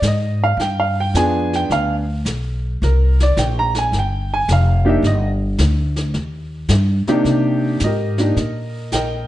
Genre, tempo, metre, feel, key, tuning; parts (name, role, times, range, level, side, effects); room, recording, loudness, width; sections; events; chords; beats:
jazz piano trio; 108 BPM; 4/4; swing 68% on 8ths; C minor; A4 = 439 Hz
warm upright piano; melody; 0.0-9.3 s; C3 to Bb5; -18 LUFS; right 1 dB
upright bass; bass; 0.0-9.3 s; F1 to C3; -18 LUFS; equal
jazz brush drum kit; drums; 0.0-9.3 s; brushed snare drum, hi-hat, snare drum; -27 LUFS; left 1 dB
light reverb; nothing above 10.4 kHz; -15 LUFS; side -14 dB against mid
0.0-7.3 A section; 7.3-9.3 B section
upright piano solo 0.0-7.3
0.0 Ab5; 0.6 G7b9; 2.8 Cm7
0.03 | 0.58 1.14 1.70 2.26 | 2.81 3.37 3.93 4.48 | 5.04 5.59 6.15 6.70 | 7.26 7.81 8.37 8.92